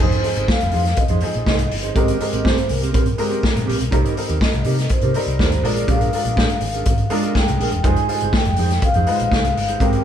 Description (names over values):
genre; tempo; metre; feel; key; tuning
disco; 122 BPM; 4/4; straight; unclear; A4 = 440 Hz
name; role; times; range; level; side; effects
vibraphone with soft mallets; melody; 0.0-10.0 s; Bb4 to Ab5; -24 LUFS; equal; none
bright baby grand piano; accompaniment; 0.0-10.0 s; F3 to C5; -26 LUFS; equal; none
mellow electric guitar; accompaniment; 0.0-10.0 s; C4 to C5; -26 LUFS; right 4 dB; none
hollow-body short-scale fingered electric bass; bass; 0.0-10.0 s; E1 to C3; -22 LUFS; equal; none
vintage drum kit; drums; 0.0-10.0 s; hi-hat, kick drum, snare drum; -19 LUFS; equal; none
room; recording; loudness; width
light reverb; band playing live in one room; -16 LUFS; side -9 dB against mid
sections
0.0-10.0 A section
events
none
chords
0.0 Fm7; 2.0 Abmaj9; 3.9 Cm7; 5.6 Bb7; 7.8 Fm7